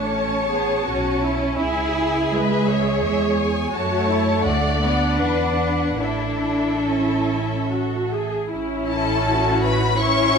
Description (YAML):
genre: classical, slow romantic movement for string orchestra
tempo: 70-87 BPM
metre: 3/4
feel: rubato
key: A major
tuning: A4 = 439 Hz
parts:
  - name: rich studio violin section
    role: melody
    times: 0.0-10.4 s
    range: E5 to C#6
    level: -27 LUFS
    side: left 4 dB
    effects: none
  - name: rich studio violin section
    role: second line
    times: 0.0-10.4 s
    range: G#4 to D5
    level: -25 LUFS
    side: left 3 dB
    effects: none
  - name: rich studio viola section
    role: accompaniment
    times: 0.0-10.4 s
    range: C#4 to G#4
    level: -25 LUFS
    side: right 1 dB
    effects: none
  - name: rich studio cello section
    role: bass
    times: 0.0-10.4 s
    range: G#3 to F#4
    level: -24 LUFS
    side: right 1 dB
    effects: none
  - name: warm studio double bass section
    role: bass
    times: 0.0-10.4 s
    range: A1 to F#2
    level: -26 LUFS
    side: right 3 dB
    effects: none
room: moderate scoring stage reverb, RT60 1.9 s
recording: none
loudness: -18 LUFS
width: side -6 dB against mid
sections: 0.0-8.5 A section; 8.5-10.4 A section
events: none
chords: 0.0 A; 1.6 C#m; 3.7 F#m7; 4.4 Bm/D; 5.2 E5; 6.0 A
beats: 0.11 0.87 | 1.60 2.33 3.04 | 3.74 4.45 5.19 | 6.01 6.87 7.72 | 8.53 9.27 9.98